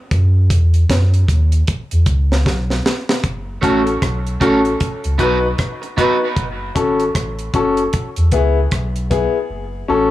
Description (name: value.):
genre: dub reggae.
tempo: 77 BPM.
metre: 4/4.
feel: swing 60% on 16ths.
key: F# dorian.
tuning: A4 = 440 Hz.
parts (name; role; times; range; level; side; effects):
soft dub sub bass; bass; 0.1-10.1 s; F#1 to F#2; -16 LUFS; equal; none.
deep reggae drum kit; drums; 0.1-9.3 s; hi-hat, kick drum, rim click, snare drum; -19 LUFS; equal; none.
electric guitar at the edge of break-up; accompaniment; 3.6-6.2 s; A3 to B4; -20 LUFS; right 4 dB; dub echo.
warm concert grand piano; stabs; 3.6-10.1 s; B3 to B4; -18 LUFS; left 4 dB; dub echo.
room: light reverb, small room ambience.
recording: none.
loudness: -14 LUFS.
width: side -15 dB against mid.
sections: 0.0-3.2 A section; 3.2-10.1 B section.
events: break 0.0-3.2; drum fill 2.5-3.2; part muted 9.5-10.1.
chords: 0.1 D#m; 1.7 E5; 3.2 F#m; 4.8 B; 6.4 F#m; 7.9 E; 9.5 F#m.